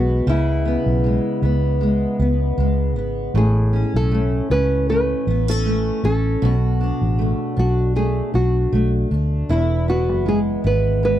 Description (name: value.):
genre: acoustic pop.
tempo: 78 BPM.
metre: 4/4.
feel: swing 55% on 16ths.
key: A major.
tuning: A4 = 439 Hz.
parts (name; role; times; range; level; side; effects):
nylon-string guitar; melody; 0.0-11.2 s; E4 to B4; -23 LUFS; equal; none.
fingerpicked steel-string acoustic guitar; accompaniment; 0.0-11.2 s; E2 to F#4; -22 LUFS; equal; double-tracked left and right.
vintage muted fingered electric bass; bass; 0.0-11.2 s; E1 to D2; -19 LUFS; equal; none.
room: small room ambience.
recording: dry, close 1970s-style studio recording.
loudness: -17 LUFS.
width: side -12 dB against mid.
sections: 0.0-11.2 A section.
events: none.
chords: 0.3 C#m7; 3.3 A; 6.4 Bm7; 9.5 E.